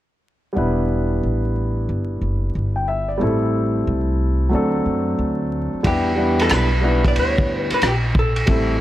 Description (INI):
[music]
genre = hip hop, jazz-hop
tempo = 91 BPM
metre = 4/4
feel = swing 66% on 16ths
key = E minor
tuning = A4 = 439 Hz
[part]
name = dark baby grand piano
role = accompaniment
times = 0.5-8.7 s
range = F#3 to G5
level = -21 LUFS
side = equal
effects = none
[part]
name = upright bass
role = bass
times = 0.6-8.8 s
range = E1 to F#2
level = -22 LUFS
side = equal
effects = none
[part]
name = vintage drum kit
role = drums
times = 5.8-8.7 s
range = hi-hat, kick drum, ride cymbal, rim click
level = -20 LUFS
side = equal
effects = none
[part]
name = vintage hollow-body jazz guitar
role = melody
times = 5.9-8.8 s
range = G4 to D5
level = -23 LUFS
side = left 1 dB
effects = none
[sound]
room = light reverb, small room ambience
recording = vinyl crackle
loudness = -17 LUFS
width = side -14 dB against mid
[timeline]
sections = 0.6-5.8 A section; 5.8-8.8 B section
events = none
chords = 0.6 Em7; 3.2 Am7; 4.5 D7; 5.8 Em7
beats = | 0.57 1.23 1.89 2.54 | 3.20 3.86 4.52 5.18 | 5.84 6.50 7.16 7.82 | 8.48